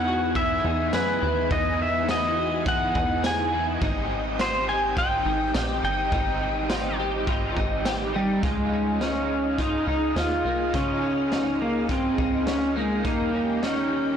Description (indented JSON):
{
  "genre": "dream pop",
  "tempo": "104 BPM",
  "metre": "4/4",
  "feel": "straight",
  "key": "unclear",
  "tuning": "A4 = 440 Hz",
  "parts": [
    { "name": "pedal steel guitar", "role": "melody", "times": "0.0-14.2 s", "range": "G3 to G#5", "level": "-25 LUFS", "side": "equal", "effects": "ping-pong delay" },
    { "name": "raw garage guitar", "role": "accompaniment", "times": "0.0-14.2 s", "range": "Ab2 to G#4", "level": "-33 LUFS", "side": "right 4 dB", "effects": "overdrive, tremolo, ensemble chorus" },
    { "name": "ensemble organ-string", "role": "sustained chords", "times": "0.0-14.2 s", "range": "E3 to G#5", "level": "-31 LUFS", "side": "equal", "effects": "ensemble chorus" },
    { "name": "twelve-string electric guitar", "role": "arpeggios", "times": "0.0-14.2 s", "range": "Bb3 to G#4", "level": "-32 LUFS", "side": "left 3 dB", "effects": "ensemble chorus, ping-pong delay" },
    { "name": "plucky analog bass", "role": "bass", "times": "0.0-14.2 s", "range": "G1 to Gb2", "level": "-32 LUFS", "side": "equal", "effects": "none" },
    { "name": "raw garage drum kit", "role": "drums", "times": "0.4-13.8 s", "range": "hi-hat, kick drum, ride cymbal, snare drum, tambourine", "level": "-31 LUFS", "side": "equal", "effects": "none" }
  ],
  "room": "moderate scoring stage reverb, RT60 1.6 s, studio reverb",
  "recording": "blown-out, overdriven recording, overdrive",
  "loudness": "-22 LUFS",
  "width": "side -8 dB against mid",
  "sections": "0.0-8.4 A section; 8.4-14.2 B section",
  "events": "none",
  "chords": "0.0 Emaj7; 3.8 Abmaj7; 8.4 Dbadd9; 13.0 Eb",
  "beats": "0.35 0.93 | 1.51 2.09 2.66 3.24 | 3.82 4.39 4.97 5.55 | 6.12 6.70 7.28 7.86 | 8.43 9.01 9.59 10.16 | 10.74 11.32 11.89 12.47 | 13.05 13.62"
}